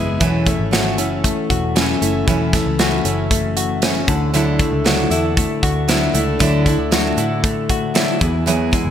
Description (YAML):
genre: jangly indie pop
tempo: 116 BPM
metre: 4/4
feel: straight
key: A major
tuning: A4 = 440 Hz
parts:
  - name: picked steel-string acoustic guitar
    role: accompaniment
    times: 0.0-8.9 s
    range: D3 to A4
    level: -21 LUFS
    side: right 4 dB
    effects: none
  - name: semi-hollow electric guitar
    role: arpeggios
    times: 0.0-8.9 s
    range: E2 to F#4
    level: -20 LUFS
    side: left 4 dB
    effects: wide subtle chorus, digital delay
  - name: vintage muted picked electric bass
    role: bass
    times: 0.0-8.9 s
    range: E1 to A2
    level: -23 LUFS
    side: equal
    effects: none
  - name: modern studio drum kit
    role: drums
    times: 0.2-8.9 s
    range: hi-hat, kick drum, snare drum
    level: -20 LUFS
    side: right 1 dB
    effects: gated reverb
room: wet plate reverb, RT60 2.0 s, small room ambience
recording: bright 1980s-style digital production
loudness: -15 LUFS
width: side -9 dB against mid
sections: 0.0-8.9 A section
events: none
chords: 0.2 A6/E; 4.1 Dadd9; 8.2 Eadd9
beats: | 0.21 0.72 1.24 1.76 | 2.27 2.79 3.31 3.82 | 4.34 4.85 5.37 5.89 | 6.40 6.92 7.44 7.95 | 8.47